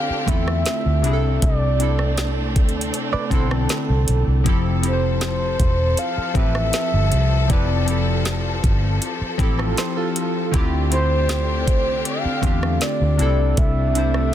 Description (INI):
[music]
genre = contemporary R&B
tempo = 79 BPM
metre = 4/4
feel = straight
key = unclear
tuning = A4 = 440 Hz
[part]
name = mellow horn-like synth lead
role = melody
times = 0.0-14.3 s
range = C5 to F5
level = -25 LUFS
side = right 1 dB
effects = chorus, digital delay
[part]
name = warm analog keys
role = accompaniment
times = 0.0-14.3 s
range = C3 to C5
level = -25 LUFS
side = left 2 dB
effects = chorus
[part]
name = clear studio string section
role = sustained chords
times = 0.0-14.3 s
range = C3 to A4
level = -29 LUFS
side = left 1 dB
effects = none
[part]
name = vintage muted fingered electric bass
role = bass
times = 0.1-14.3 s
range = E1 to E2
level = -20 LUFS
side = equal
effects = none
[part]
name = smooth R&B drum kit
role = drums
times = 0.3-14.3 s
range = hi-hat, kick drum, rim click, snare drum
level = -21 LUFS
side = equal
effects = none
[part]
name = direct-recorded clean electric guitar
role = arpeggios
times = 3.1-4.4, 9.6-10.5 s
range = F4 to D5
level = -28 LUFS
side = right 7 dB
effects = tremolo, digital delay
[sound]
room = little or no reverb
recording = dense, heavily limited modern master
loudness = -17 LUFS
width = side -11 dB against mid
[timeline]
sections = 0.0-14.3 A section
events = none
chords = 0.0 Dm11; 1.0 C69; 4.5 Fmaj7; 10.5 Dm11; 13.2 C69